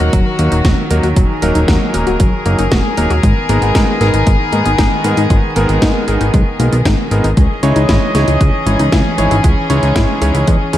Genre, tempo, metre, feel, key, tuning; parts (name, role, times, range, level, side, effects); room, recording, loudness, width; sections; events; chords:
italo disco; 116 BPM; 4/4; straight; G# minor; A4 = 440 Hz
rich chamber string section; sustained chords; 0.0-10.8 s; D#3 to D#5; -18 LUFS; left 1 dB
analog pluck; arpeggios; 0.0-10.8 s; F#3 to A#4; -21 LUFS; left 3 dB; chorus, vintage 12-bit sampler grit, digital delay
warm electric grand piano; stabs; 0.0-10.8 s; F#3 to C#5; -19 LUFS; right 1 dB; digital delay
fat analog bass; bass; 0.0-10.8 s; D#1 to G#2; -15 LUFS; equal
house drum kit; drums; 0.0-10.8 s; hi-hat, snare drum; -20 LUFS; equal; gated reverb
electronic kick drum; drums; 0.1-10.6 s; -14 LUFS; equal
light reverb; vinyl crackle; -10 LUFS; side -13 dB against mid
0.0-10.8 A section
0.0 D#m; 3.2 G#madd9; 7.4 C#madd9